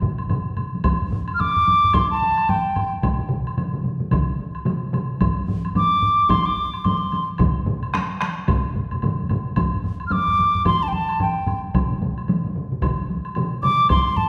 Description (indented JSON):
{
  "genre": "japanese traditional, taiko drum ensemble",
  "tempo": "110 BPM",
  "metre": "4/4",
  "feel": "swing 60% on 16ths",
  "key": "unclear",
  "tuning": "A4 = 440 Hz",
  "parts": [
    { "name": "solo taiko drums", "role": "percussion", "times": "0.0-14.3 s", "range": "none", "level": "-29 LUFS", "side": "equal", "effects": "none" },
    { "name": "taiko ensemble", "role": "percussion", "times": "0.0-13.8 s", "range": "none", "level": "-28 LUFS", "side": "equal", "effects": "none" },
    { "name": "taiko ensemble", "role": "percussion", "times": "0.0-14.1 s", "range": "none", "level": "-28 LUFS", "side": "equal", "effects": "none" },
    { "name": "taiko ensemble", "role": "percussion", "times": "0.2-14.3 s", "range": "none", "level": "-29 LUFS", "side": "equal", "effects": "none" },
    { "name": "woodblock", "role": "percussion", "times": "0.2-14.0 s", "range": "none", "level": "-35 LUFS", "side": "equal", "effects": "none" },
    { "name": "mellow hollow piccolo", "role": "melody", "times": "1.3-14.3 s", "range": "G5 to F6", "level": "-21 LUFS", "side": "equal", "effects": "none" }
  ],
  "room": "wet recital hall reverb, RT60 1.5 s",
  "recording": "recorded in a church or concert hall",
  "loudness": "-21 LUFS",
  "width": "mono",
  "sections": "0.8-14.3 A section",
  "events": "none",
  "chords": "none"
}